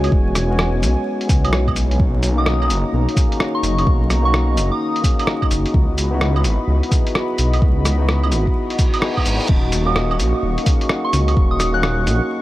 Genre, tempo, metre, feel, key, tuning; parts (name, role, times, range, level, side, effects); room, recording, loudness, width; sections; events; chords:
future garage; 128 BPM; 4/4; swing 64% on 16ths; A4 = 440 Hz
tine electric piano; accompaniment; 0.0-12.4 s; G#3 to G#4; -24 LUFS; left 2 dB; sidechain pumping, tape echo
dark analog pad; sustained chords; 0.0-12.4 s; D#4 to Db6; -26 LUFS; equal; chorus, sidechain pumping
swelling detuned saw bass; bass; 0.0-12.2 s; Eb1 to C#2; -18 LUFS; equal; sidechain pumping
lo-fi sampler-style drum kit; drums; 0.0-12.2 s; cabasa, claves, crash cymbal, hi-hat, rim click; -23 LUFS; right 1 dB
electronic kick drum; drums; 0.1-11.5 s; -17 LUFS; equal
soft synth bell; melody; 2.4-5.2, 9.9-12.2 s; C#6 to Gb6; -25 LUFS; equal; chorus, phaser, tape echo
reverse cymbal; sound effects; 8.7-9.5 s; -28 LUFS; right 2 dB
light reverb; vinyl crackle; -15 LUFS; side -16 dB against mid
0.0-12.4 A section
reverse cymbal 8.7-9.5
0.0 E69; 2.0 Bmaj9; 5.7 Dbm11; 9.5 Ebm7